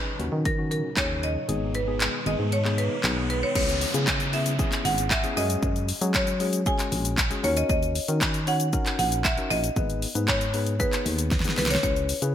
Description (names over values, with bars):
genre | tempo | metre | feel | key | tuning
dance-pop | 116 BPM | 4/4 | straight | C# dorian | A4 = 439 Hz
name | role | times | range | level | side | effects
marimba with medium hard mallets | melody | 0.0-12.3 s | A#4 to G#5 | -29 LUFS | equal | ping-pong delay
tine electric piano | accompaniment | 0.0-12.3 s | G#3 to C#5 | -32 LUFS | left 5 dB | sidechain pumping
pipe organ, stopped flute | sustained chords | 0.0-3.5 s | A#2 to D#4 | -38 LUFS | right 2 dB | sidechain pumping
riser and downlifter | sound effects | 1.4-7.7 s | none | -35 LUFS | right 1 dB | none
solid FM bass | bass | 0.2-12.3 s | G#1 to F#3 | -28 LUFS | equal | sidechain pumping
pop drum kit | drums | 0.2-12.3 s | crash cymbal, handclaps, hi-hat, kick drum, shaker, snare drum | -26 LUFS | equal | gated reverb
room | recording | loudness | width
light reverb | bright 1980s-style digital production | -22 LUFS | side -10 dB against mid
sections
0.0-3.6 A section; 3.6-12.3 B section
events
riser 1.4-3.6; kick muted 1.5-3.6; drum fill 11.3-11.8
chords
0.0 D#m7; 1.5 G#m; 3.6 C#m7; 5.4 F#sus2; 7.4 D#m7; 9.8 G#m; 11.8 C#m7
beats
0.45 0.97 | 1.49 2.00 2.52 3.04 | 3.56 4.07 4.59 5.11 | 5.63 6.14 6.66 7.18 | 7.70 8.21 8.73 9.25 | 9.76 10.28 10.80 11.31 | 11.83